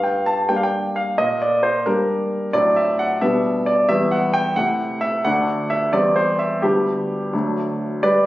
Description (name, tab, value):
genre	classical-period piano sonatina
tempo	88 BPM (dotted quarters)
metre	6/8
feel	straight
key	unclear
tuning	A4 = 441 Hz
part	clear baby grand piano	solo	0.0-8.3 s	D2 to A5	-17 LUFS	equal	none
room	moderate recital hall reverb, RT60 1.4 s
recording	recorded on a phone in the room, club reverb, compression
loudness	-17 LUFS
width	side -16 dB against mid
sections	0.0-8.0 A section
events	none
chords	0.0 Gm; 1.2 Gm/Bb; 2.5 D7/A; 3.2 G/B; 3.9 Em; 4.6 Am/C; 5.2 D; 5.9 C/E; 6.6 G/D; 7.3 D